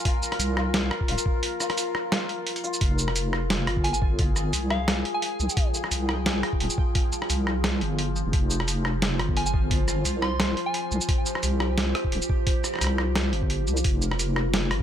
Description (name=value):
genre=half-time drum and bass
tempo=174 BPM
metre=4/4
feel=swing 55% on 16ths, half-time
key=F minor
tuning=A4 = 441 Hz
part: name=deep dark ambient pad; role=sustained chords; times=0.0-14.8 s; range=F4 to C5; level=-32 LUFS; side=left 1 dB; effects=chorus, built-in reverb, sidechain pumping
part: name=santur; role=arpeggios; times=0.0-6.0 s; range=F4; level=-36 LUFS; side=left 4 dB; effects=dub echo
part: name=boom bap sampler-style drum kit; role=drums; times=0.1-14.8 s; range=hi-hat, rim click, shaker, snare drum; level=-28 LUFS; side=right 1 dB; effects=none
part: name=electronic kick drum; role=drums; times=0.1-14.8 s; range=none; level=-25 LUFS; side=equal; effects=none
part: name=deep soft wobble bass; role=bass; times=0.4-14.8 s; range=Eb1 to C2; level=-26 LUFS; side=equal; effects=chorus
part: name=pulsing gated texture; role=texture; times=3.2-14.8 s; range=F3 to G5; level=-36 LUFS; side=equal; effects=chorus, built-in reverb
part: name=soft synth bell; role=melody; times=3.8-5.6, 9.4-10.9 s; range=F5 to C6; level=-33 LUFS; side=right 1 dB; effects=chorus, tape echo
room=digital ambience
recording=none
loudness=-23 LUFS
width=side -10 dB against mid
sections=0.0-2.8 A section; 2.8-14.8 A section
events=drop 0.0-2.8, 2.8-14.8; break 1.4-2.8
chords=0.0 F5; 2.8 Fmadd9